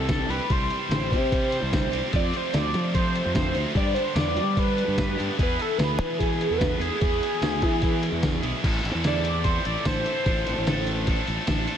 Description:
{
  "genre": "indie rock",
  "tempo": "148 BPM",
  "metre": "4/4",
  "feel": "straight",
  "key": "A minor",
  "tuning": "A4 = 440 Hz",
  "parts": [
    { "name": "overdriven synth lead", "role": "melody", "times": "0.0-11.0 s", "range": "G#4 to D5", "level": "-28 LUFS", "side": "equal", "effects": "phaser, tape echo" },
    { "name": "heavy high-gain guitar", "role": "riff", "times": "0.0-11.8 s", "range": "E2 to A4", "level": "-29 LUFS", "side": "right 1 dB", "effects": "distortion" },
    { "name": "fuzz fingered electric bass", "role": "bass", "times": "0.0-11.7 s", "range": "A1 to G3", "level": "-28 LUFS", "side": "equal", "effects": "overdrive" },
    { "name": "lo-fi sampler-style drum kit", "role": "drums", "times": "0.1-11.8 s", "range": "crash cymbal, hi-hat, kick drum, snare drum, tambourine", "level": "-26 LUFS", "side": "equal", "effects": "none" }
  ],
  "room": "light reverb",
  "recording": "none",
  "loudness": "-22 LUFS",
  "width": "side -9 dB against mid",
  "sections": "0.0-8.6 A section; 8.6-11.8 B section",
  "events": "analog synth lead solo 8.6-11.8",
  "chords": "0.0 C; 2.1 F; 3.8 G; 5.4 E; 8.6 Am; 10.3 Dm/A",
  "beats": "0.10 | 0.50 0.91 1.32 1.73 | 2.13 2.54 2.95 3.35 | 3.76 4.17 4.57 4.98 | 5.39 5.79 6.20 6.61 | 7.01 7.42 7.83 8.23 | 8.64 9.04 9.45 9.86 | 10.26 10.67 11.08 11.48"
}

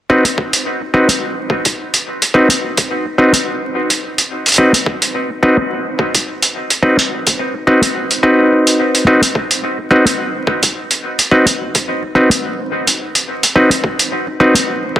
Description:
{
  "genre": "glitch hop",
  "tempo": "107 BPM",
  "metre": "4/4",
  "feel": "swing 56% on 16ths",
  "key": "unclear",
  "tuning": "A4 = 440 Hz",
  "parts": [
    { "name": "mellow clav", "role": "stabs", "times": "0.1-14.5 s", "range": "C4 to B4", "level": "-13 LUFS", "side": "equal", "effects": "sidechain pumping, low-pass filter, dub echo" },
    { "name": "electronic kick drum", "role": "drums", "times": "0.1-15.0 s", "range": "none", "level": "-20 LUFS", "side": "equal", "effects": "high-pass filter on kick" },
    { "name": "electronic hi-hat", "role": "drums", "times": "0.2-14.7 s", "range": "none", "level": "-14 LUFS", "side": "right 1 dB", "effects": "none" }
  ],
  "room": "wet plate reverb, RT60 2.7 s",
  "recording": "dense, heavily limited modern master, vinyl crackle",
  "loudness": "-12 LUFS",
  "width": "side -12 dB against mid",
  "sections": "0.1-15.0 A section",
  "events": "none",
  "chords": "0.1 Cdim",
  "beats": "| 0.10 0.66 1.22 1.78 | 2.34 2.90 3.46 4.03 | 4.58 5.15 5.71 6.27 | 6.83 7.39 7.95 8.51 | 9.07 9.63 10.19 10.75 | 11.31 11.88 12.44 13.00 | 13.56 14.12 14.68"
}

